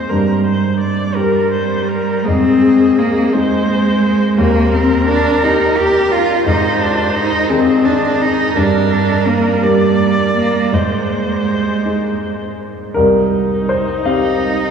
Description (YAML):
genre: neoclassical piano and strings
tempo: 53-58 BPM (dotted quarters)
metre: 6/8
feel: rubato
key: unclear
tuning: A4 = 440 Hz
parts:
  - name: rich cello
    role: second line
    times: 0.0-14.7 s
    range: G3 to G4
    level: -15 LUFS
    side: right 1 dB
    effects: none
  - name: rich viola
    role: accompaniment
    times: 0.0-14.7 s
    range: Eb4 to D5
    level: -20 LUFS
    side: equal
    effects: none
  - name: warm baby grand piano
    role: accompaniment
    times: 0.0-14.7 s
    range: C2 to F5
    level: -17 LUFS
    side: left 1 dB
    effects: none
room: wet cathedral reverb, RT60 6.2 s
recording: recorded in a church or concert hall, small room ambience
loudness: -12 LUFS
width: side -7 dB against mid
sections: 0.0-13.0 A section; 13.0-14.7 B section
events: none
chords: 0.1 Gm; 2.3 Ab; 4.4 Eb; 6.5 Ab; 8.6 Gm; 10.7 Ab; 13.0 Cm7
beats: | 0.10 1.16 | 2.26 3.33 | 4.38 5.42 | 6.46 7.50 | 8.56 9.63 | 10.73 11.85 | 12.96 14.07